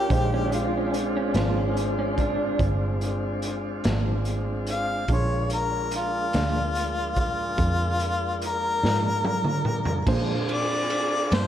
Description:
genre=slow blues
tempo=48 BPM (dotted quarters)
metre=12/8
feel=straight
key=Bb mixolydian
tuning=A4 = 439 Hz
part: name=clear harmonica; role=melody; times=0.0-11.5 s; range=F4 to F5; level=-27 LUFS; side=left 2 dB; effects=none
part: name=electric guitar through a small old amp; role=second line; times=0.0-2.6 s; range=Db4 to F4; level=-29 LUFS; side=right 1 dB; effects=tremolo, slapback echo
part: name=warm concert grand piano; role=accompaniment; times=0.0-11.5 s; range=Ab3 to C6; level=-36 LUFS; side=right 4 dB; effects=slapback echo
part: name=tonewheel organ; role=sustained chords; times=0.0-11.5 s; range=Eb3 to Ab4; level=-31 LUFS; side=equal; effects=slow rotary speaker
part: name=vintage muted fingered electric bass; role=bass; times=0.0-11.5 s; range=G1 to Bb2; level=-28 LUFS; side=equal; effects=none
part: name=electric guitar at the edge of break-up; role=accompaniment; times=0.1-11.5 s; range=Bb2 to D4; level=-35 LUFS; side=left 2 dB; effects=none
part: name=raw garage drum kit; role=drums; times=0.1-11.5 s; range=crash cymbal, hi-hat, kick drum, ride cymbal, snare drum, toms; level=-28 LUFS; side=right 1 dB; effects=none
room=moderate concert hall reverb, RT60 2.3 s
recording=big arena sound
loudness=-23 LUFS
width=side -10 dB against mid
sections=0.0-10.1 A section; 10.1-11.5 B section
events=drum fill 8.8-10.1; harmonica solo 10.1-11.5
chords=0.1 Bb7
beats=| 0.11 1.36 2.60 3.85 | 5.10 6.34 7.59 8.83 | 10.08 11.32

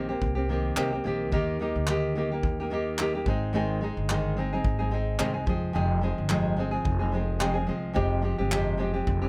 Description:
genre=acoustic pop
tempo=108 BPM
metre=4/4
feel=swing 55% on 16ths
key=unclear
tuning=A4 = 443 Hz
part: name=nylon-string guitar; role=accompaniment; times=0.0-9.3 s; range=F2 to Ab4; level=-30 LUFS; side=equal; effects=none
part: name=upright bass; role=bass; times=0.0-9.3 s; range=F1 to Eb2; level=-32 LUFS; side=equal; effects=none
part: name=natural country drum kit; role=drums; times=0.2-9.2 s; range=handclaps, kick drum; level=-33 LUFS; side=equal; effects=none
room=little or no reverb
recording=none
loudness=-27 LUFS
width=mono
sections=0.0-8.0 A section; 8.0-9.3 B section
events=none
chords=0.0 Cm7; 1.3 Eb; 3.3 Ab; 5.5 Fmadd9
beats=0.21 0.77 | 1.32 1.87 2.43 2.98 | 3.53 4.09 4.64 5.20 | 5.75 6.30 6.86 7.41 | 7.96 8.52 9.07

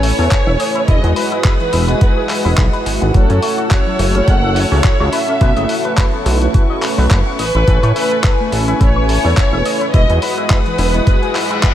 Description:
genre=nu-disco, nu disco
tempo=106 BPM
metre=4/4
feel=swing 55% on 16ths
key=unclear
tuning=A4 = 444 Hz
part: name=warm studio violin section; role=melody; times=0.0-11.7 s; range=A4 to F#5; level=-20 LUFS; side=equal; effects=vintage 12-bit sampler grit, tape echo
part: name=mellow synth brass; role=accompaniment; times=0.0-11.7 s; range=G#3 to G#5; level=-20 LUFS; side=right 1 dB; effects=chorus, sidechain pumping, tape echo
part: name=warm chamber string section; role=sustained chords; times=0.0-11.7 s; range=E4 to E6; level=-25 LUFS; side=left 3 dB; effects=vintage 12-bit sampler grit, sidechain pumping
part: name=electric guitar with an envelope filter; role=riff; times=0.0-11.7 s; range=E3 to F#5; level=-25 LUFS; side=left 4 dB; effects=wide subtle chorus, tape echo
part: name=chorused synth bass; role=bass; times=0.0-11.0 s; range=E1 to A2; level=-15 LUFS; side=equal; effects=tube saturation
part: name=dusty soul sampler-style drum kit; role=drums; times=0.0-11.7 s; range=handclaps, hi-hat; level=-23 LUFS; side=left 1 dB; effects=small room ambience
part: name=electronic kick drum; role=drums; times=0.3-11.7 s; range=none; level=-13 LUFS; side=equal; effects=small room ambience
part: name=reverse cymbal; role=sound effects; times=11.3-11.7 s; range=none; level=-22 LUFS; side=left 7 dB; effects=none
room=light reverb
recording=none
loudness=-12 LUFS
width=side -11 dB against mid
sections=0.0-11.7 A section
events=reverse cymbal 11.3-11.7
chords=0.0 Amaj9; 0.9 Emaj9; 3.1 F#m7; 5.4 B9sus4; 7.4 Amaj9; 9.9 Emaj9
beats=0.31 | 0.88 1.45 2.01 2.58 | 3.15 3.71 4.28 4.84 | 5.41 5.97 6.54 7.11 | 7.67 8.24 8.80 9.37 | 9.94 10.50 11.07 11.63

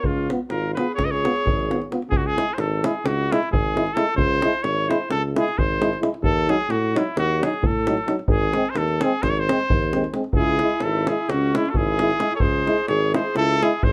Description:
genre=balkan folk, Balkan brass band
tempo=262 BPM (eighths)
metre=9/8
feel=straight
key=C# harmonic minor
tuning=A4 = 445 Hz
part: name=cornet with straight mute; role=melody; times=0.0-13.9 s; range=E4 to D#5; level=-27 LUFS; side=equal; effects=none
part: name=warm alto saxophone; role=second line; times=0.0-1.9, 10.4-13.9 s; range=C#4 to B4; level=-29 LUFS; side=equal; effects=none
part: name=warm tuba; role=bass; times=0.0-13.9 s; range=G#1 to A2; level=-27 LUFS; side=equal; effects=none
part: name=davul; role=percussion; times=0.0-13.9 s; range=none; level=-27 LUFS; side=equal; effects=none
part: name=clear euphonium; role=accompaniment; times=0.3-13.7 s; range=B#3 to E#4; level=-29 LUFS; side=equal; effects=none
part: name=clear euphonium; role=accompaniment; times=0.3-13.7 s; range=F#3 to B3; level=-30 LUFS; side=equal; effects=none
room=moderate small room ambience, RT60 0.5 s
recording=none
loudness=-22 LUFS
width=mono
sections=0.0-2.1 A section; 2.1-13.9 B section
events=none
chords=0.0 C#7; 2.1 C#m; 6.2 D#dim; 8.3 G#; 10.3 C#m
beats=| 0.03 0.26 0.49 0.72 0.95 1.18 1.41 1.64 1.87 | 2.10 2.33 2.56 2.79 3.02 3.24 3.47 3.70 3.93 | 4.16 4.39 4.62 4.85 5.08 5.30 5.53 5.76 5.99 | 6.22 6.45 6.68 6.91 7.14 7.37 7.59 7.82 8.05 | 8.28 8.51 8.74 8.97 9.20 9.43 9.66 9.89 10.12 | 10.34 10.57 10.80 11.03 11.26 11.49 11.72 11.95 12.18 | 12.41 12.64 12.87 13.10 13.33 13.55 13.79

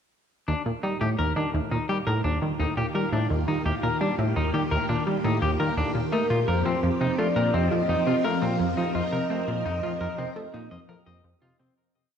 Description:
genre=ambient, sequencer-driven space music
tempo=85 BPM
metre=4/4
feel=straight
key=Eb lydian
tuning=A4 = 440 Hz
part: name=phased string machine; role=sustained chords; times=0.5-11.8 s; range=Eb3 to Bb4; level=-31 LUFS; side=equal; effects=ensemble chorus, phaser
part: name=semi-hollow electric guitar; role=arpeggios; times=0.5-11.7 s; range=C4 to Eb5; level=-30 LUFS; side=left 2 dB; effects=auto-pan, ping-pong delay
part: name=plucky analog bass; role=riff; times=0.5-11.7 s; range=Eb2 to A3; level=-26 LUFS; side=equal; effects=analog chorus, ping-pong delay
part: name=soft octave-layered synth lead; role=melody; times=6.1-11.4 s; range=Bb4 to F5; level=-28 LUFS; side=equal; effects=chorus, cassette tape, ping-pong delay
room=wet scoring stage reverb, RT60 2.1 s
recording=cassette tape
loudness=-23 LUFS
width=side -8 dB against mid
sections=0.5-11.8 A section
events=fade-in on string machine 0.5-11.8; fade-out 8.0-11.8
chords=0.5 Ebmaj7; 6.1 F7sus4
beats=| 0.48 1.19 1.89 2.60 | 3.30 4.01 4.71 5.42 | 6.13 6.83 7.54 8.24 | 8.95 9.65 10.36 11.07

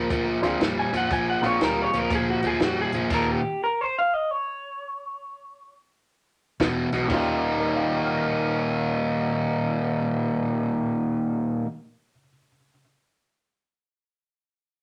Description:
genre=electric blues shuffle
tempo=120 BPM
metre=4/4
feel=swing 64% on 8ths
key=Eb mixolydian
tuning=A4 = 441 Hz
part: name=electric guitar through a small old amp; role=melody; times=0.0-5.7 s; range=Gb4 to Ab5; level=-28 LUFS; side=equal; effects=none
part: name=biting overdriven guitar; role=riff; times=0.0-3.4, 6.6-11.7 s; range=Eb2 to Eb4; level=-26 LUFS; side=equal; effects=none
part: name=vintage muted fingered electric bass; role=bass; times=0.0-3.3, 6.6-11.6 s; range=Eb1 to F2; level=-40 LUFS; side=equal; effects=none
part: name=compact cocktail drum kit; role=drums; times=0.1-3.3, 6.6-7.2 s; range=crash cymbal, hi-hat, kick drum, snare drum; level=-31 LUFS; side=equal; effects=none
part: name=honky-tonk upright piano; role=accompaniment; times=0.4-2.1, 7.0-12.8 s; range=Eb2 to Db7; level=-32 LUFS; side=equal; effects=none
room=wet small room reverb, RT60 0.5 s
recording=none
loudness=-25 LUFS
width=mono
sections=0.0-7.1 A section; 7.1-11.1 B section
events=clean electric guitar solo 0.0-7.1; stop 3.1-6.6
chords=0.0 Bb7; 3.1 Eb5; 6.6 E5; 7.1 Eb9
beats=0.11 0.61 | 1.11 1.61 2.11 2.61 | 3.11 3.61 4.11 4.61 | 5.11 5.60 6.10 6.60 | 7.10 7.60 8.10 8.60 | 9.10 9.60 10.10 10.60

